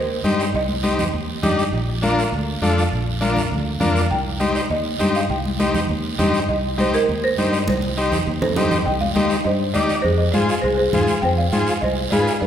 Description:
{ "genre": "latin, cumbia", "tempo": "202 BPM", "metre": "4/4", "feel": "straight", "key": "C dorian", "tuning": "A4 = 438 Hz", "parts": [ { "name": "folk marimba with medium mallets", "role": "melody", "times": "0.0-1.0, 4.1-12.5 s", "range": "G4 to G5", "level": "-23 LUFS", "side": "right 1 dB", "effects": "none" }, { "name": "fingered electric bass", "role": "bass", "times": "0.0-12.5 s", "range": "Bb1 to Ab2", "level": "-23 LUFS", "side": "equal", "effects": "none" }, { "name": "overdriven combo organ", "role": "accompaniment", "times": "0.2-12.3 s", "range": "D4 to D5", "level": "-22 LUFS", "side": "left 1 dB", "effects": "none" }, { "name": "congas", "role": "percussion", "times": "0.2-12.3 s", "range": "none", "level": "-25 LUFS", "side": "left 1 dB", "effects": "none" }, { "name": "guiro", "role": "percussion", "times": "0.2-12.5 s", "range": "none", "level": "-31 LUFS", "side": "right 4 dB", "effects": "none" } ], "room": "wet large studio reverb, RT60 1.4 s", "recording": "band playing live in one room", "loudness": "-17 LUFS", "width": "side -9 dB against mid", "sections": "0.0-8.9 A section; 8.9-12.5 B section", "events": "drum fill 7.7-8.9", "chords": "0.0 Cm; 1.7 Bb; 4.1 Cm; 10.0 Fm" }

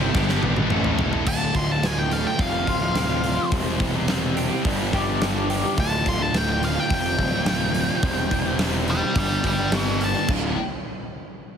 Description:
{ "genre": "quiet-loud alternative rock", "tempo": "106 BPM", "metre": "4/4", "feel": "straight", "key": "D dorian", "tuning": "A4 = 440 Hz", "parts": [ { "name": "octave-fuzz lead guitar", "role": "melody", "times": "0.0-10.3 s", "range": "A4 to C6", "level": "-26 LUFS", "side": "left 1 dB", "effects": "distortion, slapback echo" }, { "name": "high-gain distorted guitar", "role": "riff", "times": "0.0-1.3 s", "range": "G2 to C5", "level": "-28 LUFS", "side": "equal", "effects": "distortion" }, { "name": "thick fuzz guitar", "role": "riff", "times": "0.0-10.5 s", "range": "D2 to C5", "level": "-28 LUFS", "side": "left 11 dB", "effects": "distortion" }, { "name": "thick fuzz guitar", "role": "riff", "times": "0.0-10.5 s", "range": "D2 to C5", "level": "-28 LUFS", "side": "right 11 dB", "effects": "distortion" }, { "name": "fuzz picked electric bass", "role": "bass", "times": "0.0-10.5 s", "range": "D1 to A1", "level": "-27 LUFS", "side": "equal", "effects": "overdrive" }, { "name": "huge arena drum kit", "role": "drums", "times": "0.1-10.4 s", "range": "crash cymbal, hi-hat, kick drum, snare drum, toms", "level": "-26 LUFS", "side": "equal", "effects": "none" }, { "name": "electric guitar through a small old amp", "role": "arpeggios", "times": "1.3-5.8 s", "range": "D2 to G4", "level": "-29 LUFS", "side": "left 2 dB", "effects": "tremolo" } ], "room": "light reverb", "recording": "heavily compressed radio sound, multiband compression", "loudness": "-20 LUFS", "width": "side -7 dB against mid", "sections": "0.0-1.3 A section; 1.3-10.3 B section; 10.3-11.6 C section", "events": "drum fill 0.1-1.3; lead electric guitar solo 1.3-10.3", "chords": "0.1 G; 0.7 Am; 1.3 Dm; 2.4 Fsus2; 3.5 C/E; 4.7 G; 5.8 Dm; 6.9 Fsus2; 8.0 C/E; 9.2 Gadd9; 10.3 Dm" }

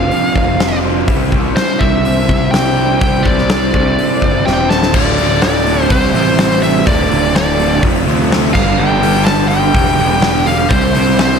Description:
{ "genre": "classic rock", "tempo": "125 BPM", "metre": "4/4", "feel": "straight", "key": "unclear", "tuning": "A4 = 440 Hz", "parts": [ { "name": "bluesy overdriven lead guitar", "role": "melody", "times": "0.0-11.4 s", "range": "C5 to A5", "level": "-17 LUFS", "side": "equal", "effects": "distortion, slapback echo" }, { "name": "raw garage guitar", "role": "riff", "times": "0.0-11.4 s", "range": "D2 to C4", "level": "-20 LUFS", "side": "left 12 dB", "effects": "overdrive, spring reverb" }, { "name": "raw garage guitar", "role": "riff", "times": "0.0-11.4 s", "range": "D2 to C5", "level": "-19 LUFS", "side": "right 11 dB", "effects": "overdrive, slapback echo" }, { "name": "growling picked electric bass", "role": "bass", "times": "0.0-11.4 s", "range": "D1 to D2", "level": "-18 LUFS", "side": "equal", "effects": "overdrive" }, { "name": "huge arena drum kit", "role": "drums", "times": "0.1-11.3 s", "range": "crash cymbal, hi-hat, kick drum, snare drum", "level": "-15 LUFS", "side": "equal", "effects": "none" }, { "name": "tonewheel organ", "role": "sustained chords", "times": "1.1-11.4 s", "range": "C4 to C5", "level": "-28 LUFS", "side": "equal", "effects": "none" }, { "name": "sludgy distorted guitar", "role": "riff", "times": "4.9-11.4 s", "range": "D2 to C5", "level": "-20 LUFS", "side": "right 1 dB", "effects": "overdrive, slapback echo" } ], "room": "light reverb, small room ambience", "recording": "none", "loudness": "-10 LUFS", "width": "side -6 dB against mid", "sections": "0.0-4.9 A section; 4.9-11.4 B section", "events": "drum fill 4.5-4.9", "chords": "0.0 Fsus2; 1.1 Cadd9; 4.9 Dm; 5.9 C; 6.9 Dm; 7.8 F; 8.6 G; 10.7 C" }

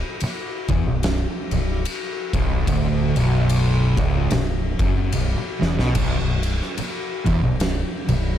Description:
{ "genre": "stoner and doom metal", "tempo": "73 BPM", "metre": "4/4", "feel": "swing 58% on 8ths", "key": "B minor", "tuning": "A4 = 440 Hz", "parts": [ { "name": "fuzz guitar", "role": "riff", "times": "0.2-8.4 s", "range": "B1 to B2", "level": "-21 LUFS", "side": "equal", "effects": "distortion" }, { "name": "growling fingered electric bass", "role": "bass", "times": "0.2-8.4 s", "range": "B0 to B1", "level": "-23 LUFS", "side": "equal", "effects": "overdrive" }, { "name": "oversized low-tuned drum kit", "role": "drums", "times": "0.2-8.2 s", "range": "crash cymbal, kick drum, ride cymbal, snare drum", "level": "-25 LUFS", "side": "equal", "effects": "none" } ], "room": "light reverb, studio ambience", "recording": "dark, warm production", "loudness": "-19 LUFS", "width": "side -10 dB against mid", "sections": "0.0-8.4 A section", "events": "drum fill 5.5-6.0", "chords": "none" }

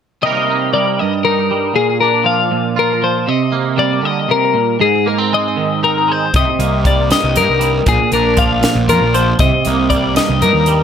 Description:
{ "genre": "math rock and midwest emo", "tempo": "79 BPM (dotted quarters)", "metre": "6/8", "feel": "straight", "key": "C minor", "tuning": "A4 = 440 Hz", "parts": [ { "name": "twangy electric guitar", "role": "accompaniment", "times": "0.2-10.8 s", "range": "G2 to Bb4", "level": "-17 LUFS", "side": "right 9 dB", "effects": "analog chorus" }, { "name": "twelve-string electric guitar", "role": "arpeggios", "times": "0.2-10.8 s", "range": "Ab4 to F5", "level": "-15 LUFS", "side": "left 7 dB", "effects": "slapback echo" }, { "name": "fuzz picked electric bass", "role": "bass", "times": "6.3-10.8 s", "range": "Bb1 to G2", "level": "-17 LUFS", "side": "equal", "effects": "overdrive" }, { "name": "crisp fusion drum kit", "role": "drums", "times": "6.3-10.8 s", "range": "hi-hat, kick drum, snare drum", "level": "-17 LUFS", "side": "equal", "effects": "none" } ], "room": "light reverb", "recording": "none", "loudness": "-12 LUFS", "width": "side -8 dB against mid", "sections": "0.2-10.8 A section", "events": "none", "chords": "0.2 Cm7; 1.8 Bb7; 3.3 Cm7; 4.8 Ab; 6.3 Cm7; 7.9 Bb7; 9.4 Cm7" }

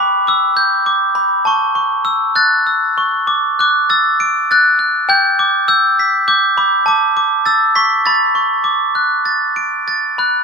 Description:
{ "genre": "children's music, lullaby", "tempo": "101 BPM", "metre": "3/4", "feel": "rubato", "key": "D major", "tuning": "A4 = 441 Hz", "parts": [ { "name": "glockenspiel with soft plastic mallets", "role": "solo", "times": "0.0-10.4 s", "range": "G5 to D7", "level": "-11 LUFS", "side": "equal", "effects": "none" } ], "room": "moderate recital hall reverb, RT60 1.9 s", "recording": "minimal, uncompressed stereo recording", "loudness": "-11 LUFS", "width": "side -4 dB against mid", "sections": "0.0-10.4 A section", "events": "none", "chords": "0.0 G; 1.4 A; 3.3 D; 5.1 G; 6.9 Asus4; 7.5 Aadd9; 8.7 D" }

